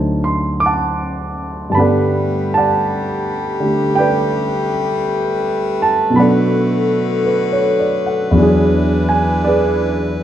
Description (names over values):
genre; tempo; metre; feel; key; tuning
jazz ballad; 55 BPM; 4/4; swing 69% on 8ths; unclear; A4 = 440 Hz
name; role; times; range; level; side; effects
dark concert grand piano; accompaniment; 0.0-10.2 s; D2 to D6; -15 LUFS; right 1 dB; none
clear saxophone section; sustained chords; 1.7-10.2 s; D3 to B4; -19 LUFS; left 2 dB; none
room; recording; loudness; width
wet large studio reverb, RT60 1.2 s; none; -14 LUFS; side -11 dB against mid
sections
0.0-10.2 A section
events
none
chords
0.0 D7b9; 1.8 Gmaj9; 6.2 Bm7; 8.4 E7